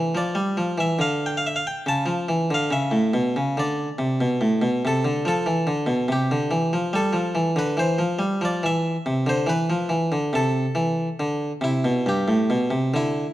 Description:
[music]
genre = classical, baroque-style suite movement for harpsichord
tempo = 70 BPM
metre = 4/4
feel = rubato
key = unclear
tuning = A4 = 440 Hz
[part]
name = harpsichord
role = solo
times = 0.0-13.3 s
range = G2 to A5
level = -20 LUFS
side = equal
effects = none
[sound]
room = moderate recital hall reverb, RT60 1.6 s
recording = dark, warm production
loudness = -20 LUFS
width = side -14 dB against mid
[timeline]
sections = 0.0-13.3 A section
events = none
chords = 0.0 Dm; 1.9 A/C#; 3.5 D5; 5.2 Dm7; 6.9 G5; 8.7 E5; 10.4 Am/C; 12.1 Em/G

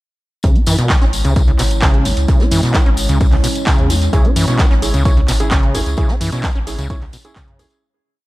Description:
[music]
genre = acid house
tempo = 130 BPM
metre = 4/4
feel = straight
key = C# minor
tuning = A4 = 440 Hz
[part]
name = dark analog pad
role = sustained chords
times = 0.4-7.8 s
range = G#3 to C#5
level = -25 LUFS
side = equal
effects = chorus, sidechain pumping
[part]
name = overdriven acid bass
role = riff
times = 0.4-7.7 s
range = C#2 to C#4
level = -20 LUFS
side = equal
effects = sidechain pumping, tape echo
[part]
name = warm sub bass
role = bass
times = 0.4-7.6 s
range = G#1 to F#2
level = -18 LUFS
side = equal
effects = sidechain pumping
[part]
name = electronic kick drum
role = drums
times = 0.4-7.5 s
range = none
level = -15 LUFS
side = equal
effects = none
[part]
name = punchy analog drum machine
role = drums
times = 0.4-7.8 s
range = handclaps, hi-hat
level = -22 LUFS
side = right 1 dB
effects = none
[part]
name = soft brush drum kit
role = drums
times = 0.4-7.8 s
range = hi-hat, snare drum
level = -33 LUFS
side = right 2 dB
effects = none
[part]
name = tambourine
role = percussion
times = 0.4-7.8 s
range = none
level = -28 LUFS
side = left 4 dB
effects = none
[part]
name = dark baby grand piano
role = stabs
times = 4.1-7.8 s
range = C#4 to C#5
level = -25 LUFS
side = right 2 dB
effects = tape echo
[sound]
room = small room ambience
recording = none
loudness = -12 LUFS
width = side -18 dB against mid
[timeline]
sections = 0.4-7.8 groove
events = filter sweep on acid bass 0.4-7.8; fade-out 5.4-7.8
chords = 0.4 C#m

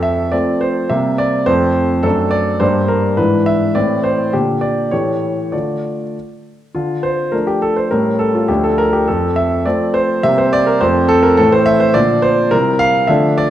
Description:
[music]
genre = classical-period piano sonatina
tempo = 104 BPM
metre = 2/4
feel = straight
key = D minor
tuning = A4 = 440 Hz
[part]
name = warm concert grand piano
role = solo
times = 0.0-13.5 s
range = D2 to F5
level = -13 LUFS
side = equal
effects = none
[sound]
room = wet recital hall reverb, RT60 1.4 s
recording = none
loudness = -12 LUFS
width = side -12 dB against mid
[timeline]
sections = 0.0-6.7 A section; 6.7-13.5 A section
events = none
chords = 0.0 F; 0.9 C7; 1.5 F; 2.0 D7/F#; 2.6 Gm; 3.2 E7/G#; 3.8 Am; 4.3 Gm/Bb; 4.9 A7; 5.5 Dm; 7.9 A7b9; 8.5 Dm; 9.1 F; 10.2 C5; 10.8 F; 11.4 Am; 11.9 Bb; 12.5 C7

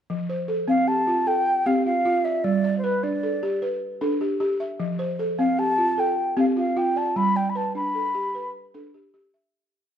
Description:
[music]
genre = west african traditional, West African string and xylophone music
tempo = 102 BPM (dotted quarters)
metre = 12/8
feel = straight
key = F lydian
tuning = A4 = 440 Hz
[part]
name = balafon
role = arpeggios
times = 0.1-9.7 s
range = F3 to E5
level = -24 LUFS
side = right 1 dB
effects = none
[part]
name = breathy mellow concert flute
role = melody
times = 0.7-8.5 s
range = B4 to B5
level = -23 LUFS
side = equal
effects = none
[sound]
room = moderate recital hall reverb, RT60 1.7 s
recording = none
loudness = -21 LUFS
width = side -9 dB against mid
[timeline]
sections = 0.1-9.5 A section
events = fade-out 7.2-9.5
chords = 0.1 F; 2.4 G; 4.8 F; 7.2 G

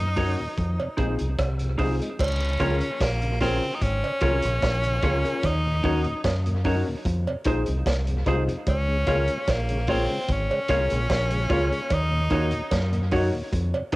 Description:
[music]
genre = roots reggae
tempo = 74 BPM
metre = 4/4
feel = straight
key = Db major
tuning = A4 = 440 Hz
[part]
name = edgy tenor saxophone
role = melody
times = 0.0-12.7 s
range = Bb3 to Eb4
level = -28 LUFS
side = equal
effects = cassette tape, analog delay
[part]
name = mellow tonewheel organ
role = accompaniment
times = 0.0-14.0 s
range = Eb2 to Gb4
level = -35 LUFS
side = left 1 dB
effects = slow rotary speaker, cassette tape, analog delay
[part]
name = dark upright piano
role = stabs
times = 0.0-14.0 s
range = C4 to Db5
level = -31 LUFS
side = left 3 dB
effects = cassette tape
[part]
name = deep dub fingered electric bass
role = bass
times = 0.0-14.0 s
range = Ab1 to Gb2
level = -25 LUFS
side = equal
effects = tube saturation
[part]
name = semi-hollow electric guitar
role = accompaniment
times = 0.2-14.0 s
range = Eb4 to Db5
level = -31 LUFS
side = right 3 dB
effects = cassette tape, analog delay
[part]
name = crunchy breakbeat drum kit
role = drums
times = 0.2-14.0 s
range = crash cymbal, hi-hat, kick drum, rim click, snare drum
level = -30 LUFS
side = equal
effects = cassette tape, analog delay
[part]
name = cowbell and jawbone-type rattle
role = percussion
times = 0.8-13.9 s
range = none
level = -32 LUFS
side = right 3 dB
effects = none
[sound]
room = light reverb, small room ambience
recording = home recording on cassette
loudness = -22 LUFS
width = side -19 dB against mid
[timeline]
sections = 0.0-2.2 A section; 2.2-14.0 B section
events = none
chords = 0.0 Ebm7; 0.6 Fm7; 2.2 Db6; 5.4 Ebm7; 7.1 Fm7; 8.7 Db6; 11.9 Ebm7

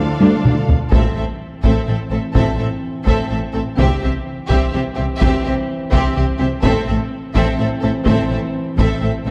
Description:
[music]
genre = cinematic, epic orchestral film score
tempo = 84 BPM (dotted quarters)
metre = 6/8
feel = straight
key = unclear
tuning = A4 = 442 Hz
[part]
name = warm symphonic violin section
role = melody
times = 0.0-9.3 s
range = E5 to F5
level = -32 LUFS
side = equal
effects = none
[part]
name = clear symphonic violin section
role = second line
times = 0.0-9.3 s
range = G4 to A4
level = -28 LUFS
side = equal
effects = none
[part]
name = warm symphonic viola section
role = accompaniment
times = 0.0-9.3 s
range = C4 to D4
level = -27 LUFS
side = equal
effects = none
[part]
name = clear trombone section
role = sustained chords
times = 0.0-0.7 s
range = A2 to F3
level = -34 LUFS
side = equal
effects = none
[part]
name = mellow French horn section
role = sustained chords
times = 0.0-9.3 s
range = E3 to D4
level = -29 LUFS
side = equal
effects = none
[part]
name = rich symphonic string section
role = sustained chords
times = 0.0-0.9 s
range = D4 to D5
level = -32 LUFS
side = equal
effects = none
[part]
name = rich symphonic cello section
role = bass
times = 0.0-9.3 s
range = A2 to D3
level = -25 LUFS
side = equal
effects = none
[part]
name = warm symphonic double bass section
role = bass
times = 0.0-9.3 s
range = A1 to D2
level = -24 LUFS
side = equal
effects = none
[part]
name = warm tuba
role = bass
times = 0.0-0.5 s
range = D2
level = -26 LUFS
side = equal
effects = none
[part]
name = taiko ensemble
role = drums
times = 0.2-9.2 s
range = none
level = -20 LUFS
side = equal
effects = none
[sound]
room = moderate scoring stage reverb, RT60 2.0 s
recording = dark, warm production, lossy compression artefacts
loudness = -17 LUFS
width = mono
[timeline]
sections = 0.9-9.3 A section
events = drum fill 0.2-0.9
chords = 0.0 Dm; 0.9 Am; 3.8 C; 6.6 Am

